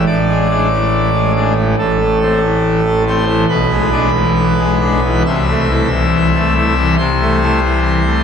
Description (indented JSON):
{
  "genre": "classical, chorale-style piece for pipe organ",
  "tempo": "70 BPM",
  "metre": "4/4",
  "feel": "rubato",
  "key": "A minor",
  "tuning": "A4 = 440 Hz",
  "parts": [
    { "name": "pipe organ, full organ", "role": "solo", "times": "0.0-8.2 s", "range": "A1 to E5", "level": "-12 LUFS", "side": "equal", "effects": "none" }
  ],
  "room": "wet cathedral reverb, RT60 6.3 s",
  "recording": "recorded in a church or concert hall",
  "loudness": "-12 LUFS",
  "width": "side -7 dB against mid",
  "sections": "0.0-8.2 A section",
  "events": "none",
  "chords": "0.0 E7/A; 1.8 Am; 3.5 E7/B; 5.3 Am/C",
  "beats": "0.07 0.92 | 1.78 2.63 3.49 4.35 | 5.26 6.13 6.99 7.85"
}